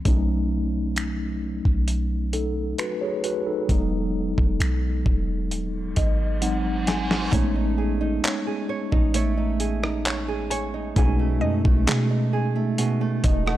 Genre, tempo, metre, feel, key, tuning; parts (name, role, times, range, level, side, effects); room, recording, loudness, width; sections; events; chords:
contemporary R&B; 66 BPM; 4/4; straight; A4 = 438 Hz
mellow tine electric piano; accompaniment; 0.0-13.6 s; F#3 to G#5; -27 LUFS; left 1 dB; fast stereo tremolo
clean 808-style bass; bass; 0.1-13.6 s; D#1 to B2; -25 LUFS; equal
dusty soul sampler-style drum kit; drums; 0.1-13.6 s; finger snaps, handclaps, hi-hat, kick drum, rim click, snare drum; -24 LUFS; equal
reverse cymbal; sound effects; 6.0-7.3 s; -36 LUFS; right 3 dB
nylon-string guitar; arpeggios; 7.3-13.6 s; B2 to C#5; -27 LUFS; right 6 dB; digital delay
mallet-like synth pluck; texture; 7.3-13.1 s; D#5 to G#5; -35 LUFS; left 3 dB; chorus, digital delay
little or no reverb; dark, warm production; -21 LUFS; side -14 dB against mid
0.0-7.3 A section; 7.3-13.6 B section
tine electric piano fill 5.5-7.3, 12.8-13.6; reverse cymbal 6.0-7.3; drum fill 6.4-7.3
0.1 B7; 3.7 Emaj7; 6.4 G#7; 7.3 Amaj9#11; 11.0 B13